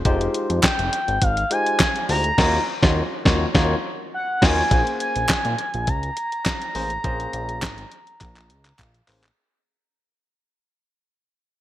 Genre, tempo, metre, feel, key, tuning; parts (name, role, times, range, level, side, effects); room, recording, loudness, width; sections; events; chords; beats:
early-eighties boogie funk; 103 BPM; 4/4; straight; Bb minor; A4 = 440 Hz
fat analog bass; bass; 0.0-9.3 s; F1 to Bb2; -25 LUFS; equal
barky tine electric piano; accompaniment; 0.1-9.4 s; Ab3 to Bb5; -26 LUFS; left 2 dB; overdrive
clean 12-bit digital drum machine; drums; 0.1-9.4 s; crash cymbal, handclaps, hi-hat, kick drum, snare drum; -21 LUFS; equal; gated reverb
expressive portamento lead; melody; 0.6-8.8 s; F5 to Bb5; -24 LUFS; equal; chorus, digital delay
group handclap; percussion; 0.6-8.9 s; -32 LUFS; right 2 dB
light reverb, digital ambience; bright 1980s-style digital production; -19 LUFS; side -14 dB against mid
0.0-4.7 A section; 4.7-9.4 B section
band accent 2.4-4.7; fade-out 4.7-9.4; drum fill 8.2-9.4; tine electric piano fill 8.5-9.4
0.1 Fm9; 2.4 Ebm9; 4.7 Bbm9
| 0.05 0.63 1.22 1.80 | 2.38 2.96 3.55 4.13 | 4.71 5.29 5.88 6.46 | 7.04 7.62 8.21 8.79